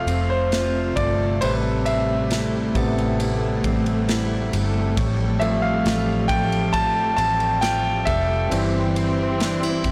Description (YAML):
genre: pop ballad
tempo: 68 BPM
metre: 4/4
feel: straight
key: unclear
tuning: A4 = 439 Hz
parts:
  - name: clear concert grand piano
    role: accompaniment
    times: 0.0-9.9 s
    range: C3 to A5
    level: -25 LUFS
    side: equal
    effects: none
  - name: warm studio string section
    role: sustained chords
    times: 0.0-9.9 s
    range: C3 to C4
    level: -28 LUFS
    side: equal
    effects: none
  - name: picked steel-string acoustic guitar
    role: arpeggios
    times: 0.0-9.9 s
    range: G2 to A4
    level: -32 LUFS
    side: equal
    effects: none
  - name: vintage muted fingered electric bass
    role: bass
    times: 0.0-9.9 s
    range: F1 to A1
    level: -27 LUFS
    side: equal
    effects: none
  - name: modern studio drum kit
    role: drums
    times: 0.1-9.9 s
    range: kick drum, ride cymbal, snare drum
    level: -32 LUFS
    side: equal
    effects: none
room: light reverb, small room reverb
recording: blown-out, overdriven recording, overdrive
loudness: -21 LUFS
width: mono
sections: 0.0-9.9 A section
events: grand piano solo 0.0-9.9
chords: 0.0 F; 1.4 Am7; 5.0 Fadd9/A; 8.5 C/G